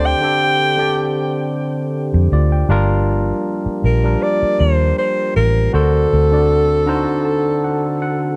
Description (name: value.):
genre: soul.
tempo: 79 BPM.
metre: 4/4.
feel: swing 54% on 16ths.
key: G minor.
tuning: A4 = 440 Hz.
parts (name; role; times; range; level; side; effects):
breathy alto saxophone; melody; 0.0-8.4 s; A4 to G5; -20 LUFS; equal; analog delay.
barky tine electric piano; accompaniment; 0.0-8.4 s; D3 to Bb5; -22 LUFS; equal; none.
mellow French horn section; sustained chords; 0.0-8.4 s; D3 to G4; -29 LUFS; equal; none.
vintage muted fingered electric bass; bass; 0.0-7.1 s; G1 to F2; -18 LUFS; equal; none.
room: moderate studio reverb, RT60 0.6 s.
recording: cassette tape.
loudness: -16 LUFS.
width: mono.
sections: 0.0-2.7 A section; 2.7-8.4 B section.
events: tine electric piano fill 6.5-8.4.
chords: 0.0 D7sus4; 2.7 Gm7; 5.7 D7.